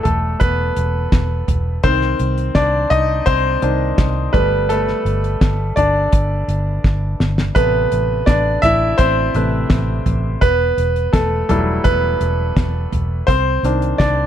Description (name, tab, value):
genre	piano-driven pop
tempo	84 BPM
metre	4/4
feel	straight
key	unclear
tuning	A4 = 440 Hz
part	clear concert grand piano	accompaniment	0.0-14.3 s	C3 to E5	-18 LUFS	equal	none
part	vintage muted fingered electric bass	bass	0.1-14.3 s	E1 to C2	-19 LUFS	equal	none
part	damped 70s drum kit	drums	0.1-14.2 s	hi-hat, kick drum, snare drum, toms	-17 LUFS	equal	none
room	light reverb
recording	none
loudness	-14 LUFS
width	side -10 dB against mid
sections	0.0-14.3 A section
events	grand piano solo 0.0-14.3; drum fill 6.8-7.6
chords	0.0 Emadd9; 1.8 Cmadd9; 4.3 Gadd9; 7.6 Amadd9; 10.4 Emadd9; 13.3 Cmadd9